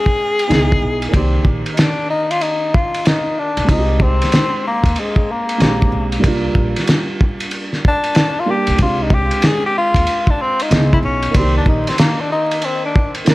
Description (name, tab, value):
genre	hip hop, jazz-hop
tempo	94 BPM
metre	4/4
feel	swing 64% on 16ths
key	C minor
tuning	A4 = 440 Hz
part	mellow tenor saxophone	melody	0.0-13.1 s	Ab3 to Ab4	-18 LUFS	left 2 dB	tape echo
part	dark upright piano	accompaniment	0.0-13.3 s	Eb3 to G5	-23 LUFS	right 2 dB	none
part	cloth-damped thuddy drum kit	drums	0.1-13.3 s	hi-hat, kick drum, ride cymbal, snare drum	-16 LUFS	equal	none
part	upright bass	bass	0.5-11.8 s	Bb1 to Eb2	-19 LUFS	equal	none
room	light reverb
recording	vinyl crackle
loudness	-13 LUFS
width	side -18 dB against mid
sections	0.0-13.3 A section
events	tenor saxophone solo 0.0-13.3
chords	0.5 Dbm9; 1.1 Cm9 (rootless); 3.7 Abmaj9/C; 5.6 Bb13; 6.2 Bb6; 8.8 Fm69/C; 10.7 Dbm9; 11.3 Cm9